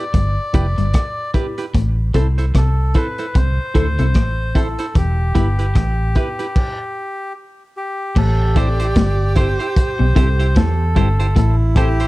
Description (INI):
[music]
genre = roots reggae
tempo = 75 BPM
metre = 4/4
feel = swing 58% on 16ths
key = A minor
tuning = A4 = 440 Hz
[part]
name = melodica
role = melody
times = 0.0-12.1 s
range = G4 to D5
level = -25 LUFS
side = left 1 dB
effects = tape echo
[part]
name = clean electric guitar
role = accompaniment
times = 0.0-12.1 s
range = E4 to C5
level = -27 LUFS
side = right 4 dB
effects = spring reverb, tape echo
[part]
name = electric guitar at the edge of break-up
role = riff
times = 0.1-11.6 s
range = E2 to E3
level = -24 LUFS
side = left 4 dB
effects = none
[part]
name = vintage muted fingered electric bass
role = bass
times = 0.1-12.1 s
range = E1 to E2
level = -17 LUFS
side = equal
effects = none
[part]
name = crunchy breakbeat drum kit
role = drums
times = 0.1-12.1 s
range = crash cymbal, hi-hat, kick drum, rim click, snare drum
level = -18 LUFS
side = equal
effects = none
[part]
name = filtered dub chord stab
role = stabs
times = 0.5-12.0 s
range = B3 to A4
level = -26 LUFS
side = left 3 dB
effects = phaser
[part]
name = clear tenor saxophone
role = second line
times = 8.2-12.1 s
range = E4 to G4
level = -24 LUFS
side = right 4 dB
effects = tape echo
[sound]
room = little or no reverb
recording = dark, warm production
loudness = -15 LUFS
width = side -19 dB against mid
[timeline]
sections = 0.0-8.2 A section; 8.2-12.1 B section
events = stop 6.6-8.2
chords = 0.0 Em; 1.7 Am; 5.0 Em; 8.2 Am7